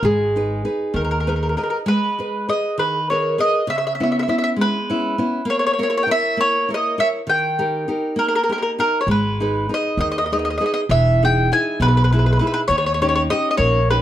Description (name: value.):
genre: italian folk, Italian serenade.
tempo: 67 BPM (dotted quarters).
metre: 6/8.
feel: rubato.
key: G# harmonic minor.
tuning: A4 = 439 Hz.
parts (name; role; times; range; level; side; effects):
mandolin; melody; 0.0-14.0 s; G#4 to G#5; -19 LUFS; equal; plate reverb.
nylon-string guitar; accompaniment; 0.0-14.0 s; B2 to D#5; -22 LUFS; equal; none.
upright bass; bass; 0.0-1.5, 9.1-14.0 s; E1 to D#2; -20 LUFS; equal; none.
room: moderate studio reverb, RT60 0.5 s.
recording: none.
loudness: -17 LUFS.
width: side -12 dB against mid.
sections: 0.0-1.9 A section; 1.9-14.0 A section.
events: nylon-string guitar fill 0.9-1.9.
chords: 0.0 G#m; 1.9 G#madd9; 3.7 C#m7; 5.5 A#dim; 7.3 D#; 9.1 G#m; 10.9 Emaj7; 12.7 D#7.